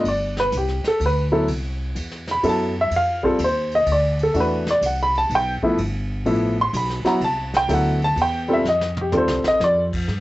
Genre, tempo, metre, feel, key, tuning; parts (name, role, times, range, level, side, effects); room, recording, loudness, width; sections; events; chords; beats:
jazz piano trio; 126 BPM; 3/4; swing 68% on 8ths; A4 = 440 Hz
warm baby grand piano; melody; 0.0-9.9 s; E3 to C6; -19 LUFS; equal; cassette tape
upright bass; bass; 0.0-10.2 s; G1 to G2; -25 LUFS; equal
vintage brush drum kit; drums; 0.0-10.2 s; brushed snare drum, crash cymbal, hi-hat, kick drum, ride cymbal, snare drum, toms; -33 LUFS; equal; cassette tape
light reverb; home recording on cassette, nothing above 8.0 kHz; -18 LUFS; side -17 dB against mid
0.0-10.1 A section
grand piano solo 0.0-10.1; drum fill 8.6-9.6
0.0 G; 1.5 C6; 2.9 F7(no3); 4.3 E5; 5.8 G13; 7.2 Cmaj9; 8.6 F9
| 0.05 0.52 1.00 | 1.48 1.96 2.44 | 2.92 3.39 3.87 | 4.35 4.83 5.30 | 5.78 6.26 6.74 | 7.21 7.69 8.17 | 8.65 9.13 9.60 | 10.08